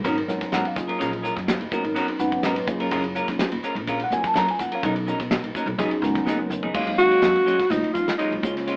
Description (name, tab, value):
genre	electric jazz fusion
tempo	125 BPM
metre	4/4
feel	straight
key	unclear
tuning	A4 = 440 Hz
part	mellow tine electric piano	accompaniment	0.0-8.8 s	Db3 to A#5	-29 LUFS	equal	phaser
part	semi-hollow electric guitar	stabs	0.0-8.8 s	F#3 to A#4	-30 LUFS	equal	none
part	upright bass	bass	0.0-8.7 s	E#1 to Eb3	-34 LUFS	equal	none
part	damped 70s drum kit	drums	0.0-8.8 s	crash cymbal, hi-hat, kick drum, ride cymbal, snare drum, toms	-33 LUFS	equal	none
part	congas	percussion	0.0-8.7 s	none	-32 LUFS	equal	none
part	breathy alto saxophone	melody	7.0-8.8 s	Db4 to Gb4	-22 LUFS	equal	none
room	moderate studio reverb, RT60 0.7 s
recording	band playing live in one room, AM radio sound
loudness	-23 LUFS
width	mono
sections	0.0-6.8 A section; 6.8-8.8 B section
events	tine electric piano fill 2.0-2.9; drum fill 6.3-6.8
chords	0.0 G#m11; 0.8 F#maj9; 1.7 G#m11; 2.7 F#maj9; 4.8 Bmaj9; 5.8 C#9sus4; 6.8 Ebm11